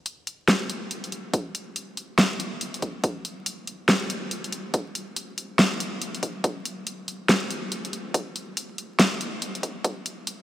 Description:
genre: dubstep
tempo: 141 BPM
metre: 4/4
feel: swing 61% on 16ths, half-time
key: none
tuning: none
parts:
  - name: deep house drum kit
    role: drums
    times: 0.1-10.4 s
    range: hi-hat, snare drum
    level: -24 LUFS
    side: equal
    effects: small room reverb
  - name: electronic kick drum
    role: drums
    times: 1.3-9.9 s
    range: none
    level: -27 LUFS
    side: equal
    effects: high-pass filter on kick, small room reverb
room: wet huge ambient reverb, RT60 4.8 s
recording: vinyl crackle, high-pass filter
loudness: -24 LUFS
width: side -13 dB against mid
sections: 0.0-10.4 A section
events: build-up 0.0-10.4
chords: none

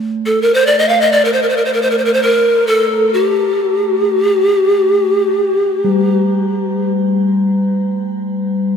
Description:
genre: world meditative, free-time meditation music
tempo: free time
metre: none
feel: none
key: unclear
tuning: A4 = 440 Hz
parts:
  - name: bronze singing bowl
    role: texture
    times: 0.0-8.8 s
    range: G3 to A3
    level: -18 LUFS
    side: left 1 dB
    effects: none
  - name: breathy mellow pan flute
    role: melody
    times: 0.3-6.9 s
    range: G4 to F5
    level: -12 LUFS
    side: equal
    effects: shimmer reverb, ping-pong delay
room: wet church reverb, RT60 3.3 s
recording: none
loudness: -12 LUFS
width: side -7 dB against mid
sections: 0.0-8.8 A section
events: none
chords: none

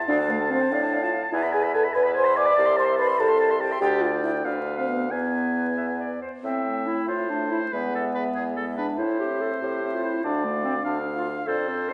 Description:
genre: quick classical-period movement for wind quintet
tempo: 96 BPM (dotted quarters)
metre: 6/8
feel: rubato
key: A minor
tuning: A4 = 443 Hz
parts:
  - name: mellow hollow concert flute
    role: melody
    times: 0.0-11.9 s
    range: A4 to D6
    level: -33 LUFS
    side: equal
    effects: none
  - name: warm oboe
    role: second line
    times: 0.0-11.9 s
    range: G#4 to C6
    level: -31 LUFS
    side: equal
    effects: none
  - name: mellow clarinet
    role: accompaniment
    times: 0.0-11.9 s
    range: A3 to A5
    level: -32 LUFS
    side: equal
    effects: none
  - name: mellow French horn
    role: accompaniment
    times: 0.1-11.9 s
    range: G#3 to D5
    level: -29 LUFS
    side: equal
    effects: none
  - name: warm bassoon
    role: bass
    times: 0.1-11.9 s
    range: C2 to A2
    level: -32 LUFS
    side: equal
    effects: none
room: wet recital hall reverb, RT60 1.4 s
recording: recorded in a church or concert hall, vinyl crackle, nothing above 10.5 kHz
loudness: -24 LUFS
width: mono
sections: 0.0-6.4 A section; 6.4-11.9 A section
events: none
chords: 0.1 Dm; 1.3 E; 2.6 Am/C; 3.8 D5; 4.4 Bdim/D; 5.1 E; 6.4 Am; 7.7 E; 9.0 Am; 10.2 Dm

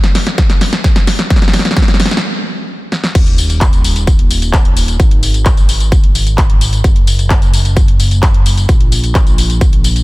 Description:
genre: EDM, festival progressive house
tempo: 130 BPM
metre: 4/4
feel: straight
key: F# major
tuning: A4 = 440 Hz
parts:
  - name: fat analog bass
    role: bass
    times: 0.0-10.0 s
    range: D#1 to A#1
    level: -15 LUFS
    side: equal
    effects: sidechain pumping, high-pass filter
  - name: house drum kit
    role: drums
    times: 0.0-10.0 s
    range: crash cymbal, handclaps, hi-hat, snare drum, tambourine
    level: -16 LUFS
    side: equal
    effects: none
  - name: electronic kick drum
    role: drums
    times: 0.4-9.7 s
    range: none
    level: -10 LUFS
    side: equal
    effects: overdrive
room: digital ambience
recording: dense, heavily limited modern master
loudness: -9 LUFS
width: side -20 dB against mid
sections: 0.0-3.2 A section; 3.2-10.0 B section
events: build-up 0.0-3.2; drum fill 0.0-2.2, 2.9; stop 2.2-3.2; drop 3.2-10.0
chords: none

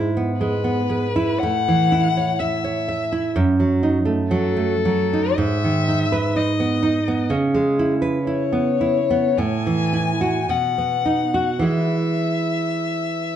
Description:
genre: romantic duo for violin and classical guitar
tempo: 49-67 BPM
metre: 4/4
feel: rubato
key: E major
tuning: A4 = 440 Hz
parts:
  - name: nylon-string guitar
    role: accompaniment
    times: 0.0-13.4 s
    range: F#2 to E5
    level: -19 LUFS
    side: right 2 dB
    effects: none
  - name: rich violin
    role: melody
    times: 0.4-13.4 s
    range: A4 to G#5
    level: -23 LUFS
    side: left 8 dB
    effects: none
room: moderate recital hall reverb, RT60 1.4 s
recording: dark, warm production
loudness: -18 LUFS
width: side -10 dB against mid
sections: 0.0-13.4 A section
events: none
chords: 0.0 E/G#; 1.4 A; 3.4 D#dim/F#; 5.4 G#m; 7.3 C#m7; 9.4 F#m7/A; 10.5 B; 11.6 E

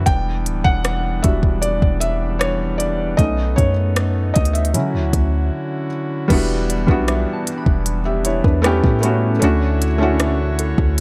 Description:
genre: contemporary R&B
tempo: 77 BPM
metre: 4/4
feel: straight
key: E dorian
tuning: A4 = 440 Hz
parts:
  - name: felt-muted upright piano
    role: accompaniment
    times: 0.0-11.0 s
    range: F#3 to G5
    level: -23 LUFS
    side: equal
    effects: none
  - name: pipe organ, foundations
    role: sustained chords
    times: 0.0-11.0 s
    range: D3 to C#5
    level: -28 LUFS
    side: equal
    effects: none
  - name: warm 808-style bass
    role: bass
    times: 0.0-11.0 s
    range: D1 to D3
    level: -22 LUFS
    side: equal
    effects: none
  - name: smooth R&B drum kit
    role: drums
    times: 0.1-11.0 s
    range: crash cymbal, hi-hat, kick drum, rim click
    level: -21 LUFS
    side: equal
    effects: none
  - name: soft synth bell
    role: texture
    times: 6.7-11.0 s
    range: A4 to B5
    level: -37 LUFS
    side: equal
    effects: chorus, tape echo
room: little or no reverb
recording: none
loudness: -18 LUFS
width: mono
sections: 0.0-6.3 A section; 6.3-11.0 B section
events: felt piano solo 0.0-6.3; break 5.5-6.3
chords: 0.1 Em7; 3.2 B7; 4.7 Dmaj9; 6.3 Em7; 8.6 A9; 9.4 Dmaj9

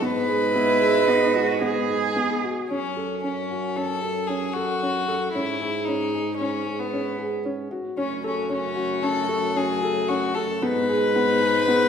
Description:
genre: contemporary instrumental, chamber music in an uneven meter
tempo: 113 BPM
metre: 5/4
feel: straight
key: unclear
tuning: A4 = 441 Hz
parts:
  - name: rich violin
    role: melody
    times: 0.0-11.9 s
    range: B3 to B4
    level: -24 LUFS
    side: left 2 dB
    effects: none
  - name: clear woodwind section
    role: sustained chords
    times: 0.0-2.7, 8.0-11.9 s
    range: B2 to D#5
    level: -30 LUFS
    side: right 2 dB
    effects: none
  - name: felt-muted upright piano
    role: arpeggios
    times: 0.0-11.9 s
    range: B3 to A4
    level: -27 LUFS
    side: equal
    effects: none
  - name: warm tuba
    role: bass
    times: 0.0-11.9 s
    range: F#2 to G#2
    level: -29 LUFS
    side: right 2 dB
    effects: none
  - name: warm cello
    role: second line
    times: 0.5-2.7 s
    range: D#4 to G#4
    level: -27 LUFS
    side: right 4 dB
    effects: none
room: wet recital hall reverb, RT60 1.4 s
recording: recorded in a church or concert hall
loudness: -21 LUFS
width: side -7 dB against mid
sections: 0.0-2.7 A section; 2.7-11.9 B section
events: none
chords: 0.0 G#m; 2.7 F#m; 5.3 C#5/G#; 8.0 F#m; 10.6 G#m

